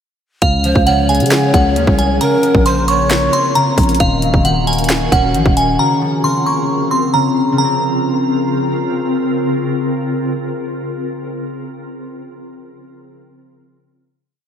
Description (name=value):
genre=hip hop, trap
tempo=134 BPM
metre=4/4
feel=half-time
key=Bb minor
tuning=A4 = 440 Hz
part: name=glassy synth bell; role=melody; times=0.4-8.9 s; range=F5 to Db6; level=-17 LUFS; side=right 1 dB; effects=chorus, phaser, diffuse ambient delay
part: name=concert harp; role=accompaniment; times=0.4-11.6 s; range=Db3 to Db4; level=-19 LUFS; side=left 1 dB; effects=none
part: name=glassy FM pad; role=sustained chords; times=1.0-11.5 s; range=Db3 to Bb4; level=-21 LUFS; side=left 2 dB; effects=ensemble chorus, built-in reverb, tremolo
part: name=growling 808-style bass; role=bass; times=0.4-5.8 s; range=Eb1 to Db3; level=-17 LUFS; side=equal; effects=none
part: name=trap drum kit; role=drums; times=0.4-5.7 s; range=handclaps, hi-hat, kick drum, snare drum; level=-17 LUFS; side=equal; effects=none
part: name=breathy polished pan flute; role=second line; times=0.6-3.5 s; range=Bb4 to Db5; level=-20 LUFS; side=left 1 dB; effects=diffuse ambient delay
room=wet huge ambient reverb, RT60 4.2 s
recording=dreamy mix soaked in reverb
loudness=-12 LUFS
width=side -8 dB against mid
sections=0.4-7.6 hook; 7.6-11.2 final chord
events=none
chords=0.4 Db6; 2.2 Bbmadd9; 4.0 Ebm7; 5.8 Bbmadd9